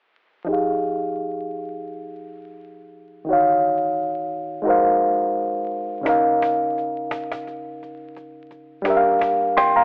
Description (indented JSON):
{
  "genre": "lo-fi hip hop",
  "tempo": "86 BPM",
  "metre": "4/4",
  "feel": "swing 60% on 16ths",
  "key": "F minor",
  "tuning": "A4 = 443 Hz",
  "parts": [
    { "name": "barky reed electric piano", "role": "accompaniment", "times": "0.4-9.8 s", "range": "Db3 to C6", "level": "-22 LUFS", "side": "equal", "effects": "overdrive, cassette tape, low-pass filter" },
    { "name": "cajon", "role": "drums", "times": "6.1-9.8 s", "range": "none", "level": "-32 LUFS", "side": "equal", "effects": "none" }
  ],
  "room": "wet plate reverb, RT60 1.6 s, studio reverb",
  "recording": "vinyl crackle, telephone sound",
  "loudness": "-21 LUFS",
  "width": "mono",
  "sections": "0.5-9.8 A section",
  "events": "filter sweep on reed electric piano 0.5-9.8",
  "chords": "0.5 Fm9; 3.3 Ebm7; 4.7 Ab13; 6.1 Db69; 8.9 Gm7",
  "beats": "| 0.48 1.18 1.88 2.58 | 3.27 3.97 4.67 5.37 | 6.07 6.76 7.46 8.16 | 8.86 9.55"
}